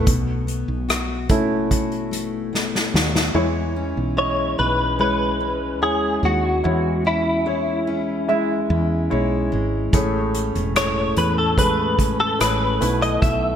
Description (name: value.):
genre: pop ballad.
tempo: 73 BPM.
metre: 4/4.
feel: straight.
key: E major.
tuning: A4 = 439 Hz.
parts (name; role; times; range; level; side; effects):
clear baby grand piano; accompaniment; 0.0-13.6 s; A2 to E5; -24 LUFS; equal; wide subtle chorus.
fingerpicked steel-string acoustic guitar; arpeggios; 0.0-13.6 s; E2 to F#4; -28 LUFS; left 3 dB; none.
woody fretless electric bass; bass; 0.0-13.6 s; E1 to E2; -25 LUFS; right 1 dB; none.
unplugged drum kit; drums; 0.1-3.3, 9.9-13.4 s; hi-hat, kick drum, rim click, snare drum; -22 LUFS; equal; gated reverb.
direct-recorded clean electric guitar; melody; 4.2-13.6 s; E4 to E5; -21 LUFS; left 1 dB; ensemble chorus.
room: moderate plate reverb, RT60 2.6 s.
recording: bright 1980s-style digital production.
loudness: -18 LUFS.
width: side -8 dB against mid.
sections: 0.1-3.4 A section; 3.4-13.6 B section.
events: grand piano solo 0.1-3.4; drum fill 2.5-3.4.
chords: 0.1 B7sus4; 3.4 E6; 9.9 Amaj7; 12.8 B7sus4.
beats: | 0.07 0.89 1.71 2.53 | 3.35 4.18 5.00 5.82 | 6.64 7.46 8.29 9.11 | 9.93 10.75 11.57 12.40 | 13.22.